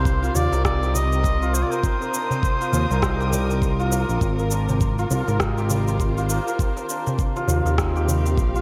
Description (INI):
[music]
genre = organic downtempo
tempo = 101 BPM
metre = 4/4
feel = swing 58% on 16ths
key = unclear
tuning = A4 = 440 Hz
[part]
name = trumpet with cup mute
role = melody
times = 0.0-3.9 s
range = C5 to Eb5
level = -29 LUFS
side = equal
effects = digital delay
[part]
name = dark chamber string section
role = sustained chords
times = 0.0-8.6 s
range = C3 to Eb6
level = -34 LUFS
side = equal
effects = sidechain pumping
[part]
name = santur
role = arpeggios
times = 0.0-8.6 s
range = G3 to C5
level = -29 LUFS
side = equal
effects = digital delay
[part]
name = smooth synth bass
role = bass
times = 0.0-8.6 s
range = Ab1 to Eb2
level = -24 LUFS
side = equal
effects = none
[part]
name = electronic cabasa and rim click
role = drums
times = 0.1-8.6 s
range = none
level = -32 LUFS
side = equal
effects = gated reverb
[part]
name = electronic kick drum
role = drums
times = 0.1-8.5 s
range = none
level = -26 LUFS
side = equal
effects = none
[part]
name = darbuka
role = percussion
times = 0.4-8.3 s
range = none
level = -32 LUFS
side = equal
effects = none
[sound]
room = light reverb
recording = bright 1980s-style digital production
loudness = -22 LUFS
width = mono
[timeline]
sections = 0.0-8.6 A section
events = none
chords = 0.0 Eb69; 4.2 Ab69; 6.6 Eb69